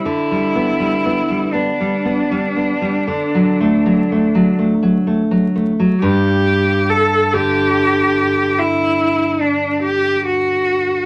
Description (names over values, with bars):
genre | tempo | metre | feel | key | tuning
romantic duo for cello and classical guitar | 38-50 BPM (dotted quarters) | 12/8 | rubato | G major | A4 = 440 Hz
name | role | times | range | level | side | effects
clear cello | melody | 0.0-11.1 s | D4 to A4 | -19 LUFS | equal | none
nylon-string guitar | accompaniment | 0.0-11.1 s | G2 to B3 | -19 LUFS | equal | none
room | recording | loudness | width
moderate small room reverb, RT60 0.5 s | vinyl crackle | -16 LUFS | mono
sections
0.0-6.0 A section; 6.0-11.1 B section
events
none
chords
0.0 G/D; 3.1 D; 6.0 G5